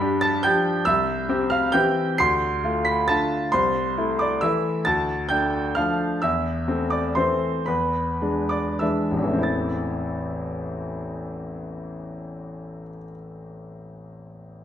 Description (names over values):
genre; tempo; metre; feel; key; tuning
classical, piano waltz; 90-146 BPM; 3/4; rubato; A minor; A4 = 440 Hz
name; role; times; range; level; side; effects
bright grand piano; solo; 0.0-14.6 s; A1 to C7; -22 LUFS; equal; none
room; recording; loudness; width
wet recital hall reverb, RT60 1.6 s; none; -21 LUFS; side -10 dB against mid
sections
0.0-9.4 A section; 9.4-13.2 B section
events
slowing down 5.5-9.4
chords
0.0 G7; 0.9 C; 2.2 Dm; 3.5 Am/C; 4.9 Dm; 6.2 Am/E; 7.7 E7; 9.4 Am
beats
0.00 0.44 | 0.86 1.29 1.73 | 2.20 2.64 3.09 | 3.53 3.97 4.43 | 4.86 5.30 5.76 | 6.22 6.67 7.16 | 7.67 8.21 8.81 | 9.45 10.07 10.71 | 11.35 11.97 12.61